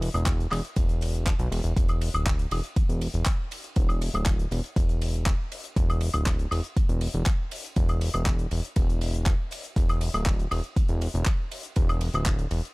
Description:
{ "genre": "nu-disco, nu disco", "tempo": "120 BPM", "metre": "4/4", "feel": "straight", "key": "unclear", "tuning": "A4 = 440 Hz", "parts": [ { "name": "fat analog bass", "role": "bass", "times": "0.0-12.6 s", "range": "D1 to B1", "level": "-26 LUFS", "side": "equal", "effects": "tube saturation, sidechain pumping" }, { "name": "damped 70s drum kit", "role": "drums", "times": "0.0-12.7 s", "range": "handclaps, hi-hat, ride cymbal, woodblock", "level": "-33 LUFS", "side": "equal", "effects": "studio reverb" }, { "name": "electronic kick drum", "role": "drums", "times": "0.3-12.4 s", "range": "none", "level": "-24 LUFS", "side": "equal", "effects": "studio reverb" } ], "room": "little or no reverb", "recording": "dry, gritty hardware recording", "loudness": "-24 LUFS", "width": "side -25 dB against mid", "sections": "0.0-12.7 A section", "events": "none", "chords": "none" }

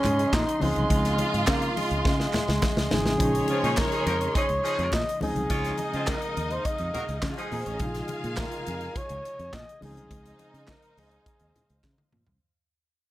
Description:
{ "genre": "disco", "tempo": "104 BPM", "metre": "4/4", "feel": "straight", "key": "unclear", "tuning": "A4 = 440 Hz", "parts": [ { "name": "breathy flugelhorn", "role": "melody", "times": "0.0-11.8 s", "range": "Ab3 to Eb5", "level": "-29 LUFS", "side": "equal", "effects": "none" }, { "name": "warm symphonic string section", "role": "second line", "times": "0.0-12.1 s", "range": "F3 to F5", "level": "-34 LUFS", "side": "right 1 dB", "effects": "none" }, { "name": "barky reed electric piano", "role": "accompaniment", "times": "0.0-12.4 s", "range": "C3 to C5", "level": "-33 LUFS", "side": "left 1 dB", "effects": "overdrive, fast tremolo" }, { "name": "warm studio string section", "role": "sustained chords", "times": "0.0-12.4 s", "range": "Db3 to C6", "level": "-36 LUFS", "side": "right 1 dB", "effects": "none" }, { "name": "fingered electric bass", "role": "bass", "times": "0.0-12.4 s", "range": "Ab1 to Db3", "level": "-30 LUFS", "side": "equal", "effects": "none" }, { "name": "group handclap", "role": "percussion", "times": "0.0-12.0 s", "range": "none", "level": "-38 LUFS", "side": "right 5 dB", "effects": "none" }, { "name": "modern studio drum kit", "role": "drums", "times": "0.1-12.4 s", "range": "handclaps, hi-hat, kick drum, snare drum, toms", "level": "-29 LUFS", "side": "equal", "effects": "none" }, { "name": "congas", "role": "percussion", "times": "0.1-12.4 s", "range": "none", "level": "-37 LUFS", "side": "left 3 dB", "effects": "none" }, { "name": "clear horn section", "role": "stabs", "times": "3.5-7.6 s", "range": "Db3 to Db5", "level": "-32 LUFS", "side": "equal", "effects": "none" } ], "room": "light reverb, small room ambience", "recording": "none", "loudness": "-24 LUFS", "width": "side -15 dB against mid", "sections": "0.0-3.2 A section; 3.2-12.4 B section", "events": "drum fill 2.0-3.2, 11.8-12.4; fade-out 3.2-12.4", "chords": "0.0 Bbm11; 0.6 Dbmaj9; 3.2 Bbm11; 5.2 Dbmaj9; 7.8 Bbm11; 9.8 Dbmaj9" }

